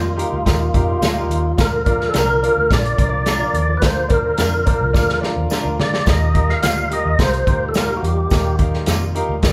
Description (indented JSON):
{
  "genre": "uptempo 1960s-style soul",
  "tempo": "107 BPM",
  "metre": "4/4",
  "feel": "straight",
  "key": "Eb major",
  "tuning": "A4 = 439 Hz",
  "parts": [
    { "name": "tonewheel organ", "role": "melody", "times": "0.0-8.6 s", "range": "F4 to F5", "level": "-22 LUFS", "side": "equal", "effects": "overdrive, chorus vibrato, slow rotary speaker" },
    { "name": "bright upright piano", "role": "accompaniment", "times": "0.0-9.5 s", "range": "D3 to F5", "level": "-28 LUFS", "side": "equal", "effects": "none" },
    { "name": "percussive tonewheel organ", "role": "sustained chords", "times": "0.0-9.5 s", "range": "D3 to F4", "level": "-34 LUFS", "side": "equal", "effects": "none" },
    { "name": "electric guitar through a small old amp", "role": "stabs", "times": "0.0-9.0 s", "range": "G3 to Bb4", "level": "-31 LUFS", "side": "equal", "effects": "none" },
    { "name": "vintage muted fingered electric bass", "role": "bass", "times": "0.0-9.5 s", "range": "Bb1 to D3", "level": "-24 LUFS", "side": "equal", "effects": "none" },
    { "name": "warm soul drum kit", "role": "drums", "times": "0.2-9.5 s", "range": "hi-hat, kick drum, snare drum", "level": "-21 LUFS", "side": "equal", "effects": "none" },
    { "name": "tambourine", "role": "percussion", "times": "0.5-9.5 s", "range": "none", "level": "-38 LUFS", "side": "equal", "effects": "none" }
  ],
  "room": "moderate large studio reverb, RT60 1.3 s",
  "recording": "band playing live in one room",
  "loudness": "-18 LUFS",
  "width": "mono",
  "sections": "0.0-9.5 A section",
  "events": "drum fill 5.0-6.1",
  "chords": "0.0 Ebadd9; 1.6 Bb; 6.1 Ebadd9"
}